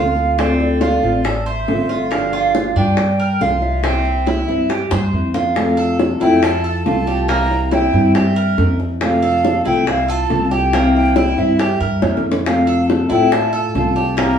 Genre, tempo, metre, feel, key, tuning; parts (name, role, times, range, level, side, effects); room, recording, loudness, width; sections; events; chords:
latin, Cuban son and guajira; 139 BPM; 4/4; straight; F major; A4 = 438 Hz
mellow hollow silver concert flute; melody; 0.0-14.4 s; D5 to Bb5; -21 LUFS; right 1 dB
nylon-string guitar; accompaniment; 0.0-14.4 s; C3 to G4; -19 LUFS; left 2 dB
Cuban tres; arpeggios; 0.0-14.4 s; Bb3 to C5; -22 LUFS; right 3 dB
upright bass; bass; 0.0-14.4 s; G1 to A2; -20 LUFS; equal
bongos; percussion; 0.2-14.4 s; -21 LUFS; left 2 dB
nylon-string guitar; second line; 5.6-14.4 s; C4 to G4; -23 LUFS; equal
wet small room reverb, RT60 0.5 s; band playing live in one room, studio reverb; -14 LUFS; side -8 dB against mid
0.0-5.6 A section; 5.6-14.4 B section
drum fill 4.9-5.6, 12.0-12.5
0.4 Dm7; 2.1 Gm7; 3.8 C7; 5.6 Fmaj7; 7.3 C7; 9.0 Fmaj7; 10.7 C7; 12.5 Fmaj7